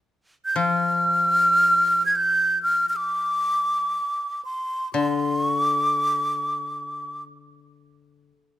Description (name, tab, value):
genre	japanese traditional, Japanese chamber music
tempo	free time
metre	none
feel	none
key	unclear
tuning	A4 = 436 Hz
part	breathy mellow silver concert flute	melody	0.5-7.2 s	C6 to Ab6	-20 LUFS	equal	none
part	koto	accompaniment	0.6-8.3 s	D3 to F3	-28 LUFS	left 6 dB	none
room	light reverb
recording	close, detailed microphones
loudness	-20 LUFS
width	side -13 dB against mid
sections	0.0-8.6 A section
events	none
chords	none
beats	free time